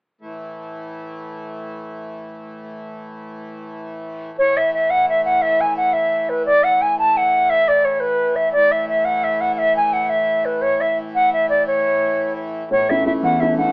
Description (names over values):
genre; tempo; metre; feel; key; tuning
celtic folk; 115 BPM (dotted quarters); 6/8; straight; A major; A4 = 436 Hz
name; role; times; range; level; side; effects
accordion; drone; 0.2-13.7 s; A2 to E3; -29 LUFS; equal; none
bright reedy baroque flute; melody; 4.4-13.7 s; B4 to A5; -15 LUFS; equal; none
dark upright piano; accompaniment; 12.7-13.7 s; E2 to E4; -20 LUFS; equal; none
room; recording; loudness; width
wet small room reverb, RT60 0.5 s; band playing live in one room, AM radio sound; -15 LUFS; side -30 dB against mid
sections
0.2-4.4 A section; 4.4-12.7 B section; 12.7-13.7 B section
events
none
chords
0.2 A5; 12.7 A